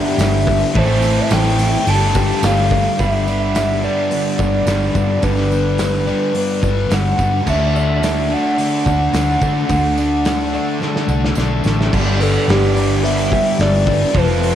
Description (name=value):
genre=rock, shoegaze and dream pop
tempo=108 BPM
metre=4/4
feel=straight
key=G major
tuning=A4 = 439 Hz
part: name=warbly nostalgic lead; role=melody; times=0.0-14.6 s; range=G4 to A5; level=-20 LUFS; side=equal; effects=chorus, cassette tape, analog delay
part: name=fingerpicked twelve-string acoustic guitar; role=arpeggios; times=0.0-14.6 s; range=E3 to G4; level=-28 LUFS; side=left 10 dB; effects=wide subtle chorus, cassette tape, analog delay
part: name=distorted electric guitar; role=riff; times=0.0-14.6 s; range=F2 to D4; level=-26 LUFS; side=right 1 dB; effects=overdrive, cassette tape
part: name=overdriven electric guitar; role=riff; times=0.0-14.6 s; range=G2 to B4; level=-23 LUFS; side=right 9 dB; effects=reverse reverb, cassette tape
part: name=thick fuzz guitar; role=riff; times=0.0-14.6 s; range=F2 to D4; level=-22 LUFS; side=left 8 dB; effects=distortion, lush chorus, cassette tape
part: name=vintage muted fingered electric bass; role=bass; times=0.2-14.6 s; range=F1 to D3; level=-18 LUFS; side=equal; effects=none
part: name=loose indie drum kit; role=drums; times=0.2-14.6 s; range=crash cymbal, hi-hat, kick drum, snare drum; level=-22 LUFS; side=equal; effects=none
part: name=tambourine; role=percussion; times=0.2-11.8 s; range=none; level=-36 LUFS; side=right 14 dB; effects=none
room=light reverb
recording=home recording on cassette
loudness=-14 LUFS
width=side -10 dB against mid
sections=0.0-3.0 A section; 3.0-11.9 B section; 11.9-14.6 A section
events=drum fill 10.8-11.9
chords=0.0 G6; 0.8 Am7; 1.9 Gsus2; 3.0 G; 7.5 D; 11.9 G6